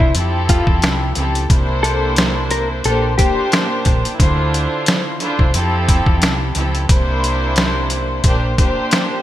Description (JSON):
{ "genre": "hip hop, boom-bap hip-hop", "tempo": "89 BPM", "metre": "4/4", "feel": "swing 54% on 16ths", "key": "unclear", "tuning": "A4 = 439 Hz", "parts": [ { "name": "mellow electric guitar", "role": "melody", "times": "0.0-3.5 s", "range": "E4 to Bb4", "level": "-22 LUFS", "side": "left 2 dB", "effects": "analog chorus, high-pass filter, low-pass filter, ping-pong delay" }, { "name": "warm studio string section", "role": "accompaniment", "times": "0.0-9.2 s", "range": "Bb2 to C5", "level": "-20 LUFS", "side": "equal", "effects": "cassette tape, high-pass filter, low-pass filter" }, { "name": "hollow-body short-scale fingered electric bass", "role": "bass", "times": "0.0-8.5 s", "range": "Bb1 to F2", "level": "-19 LUFS", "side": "equal", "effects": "none" }, { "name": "trip hop sampler-style drum kit", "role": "drums", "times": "0.0-9.1 s", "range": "hi-hat, kick drum, snare drum", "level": "-16 LUFS", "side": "equal", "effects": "none" } ], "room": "light reverb, digital ambience", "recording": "bright 1980s-style digital production", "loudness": "-14 LUFS", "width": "side -13 dB against mid", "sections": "0.0-9.2 A section", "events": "none", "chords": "0.2 Fmaj7; 1.5 C7; 2.8 Bb6; 4.2 Dm9; 5.5 Fmaj7; 6.9 C7; 8.2 Bb6" }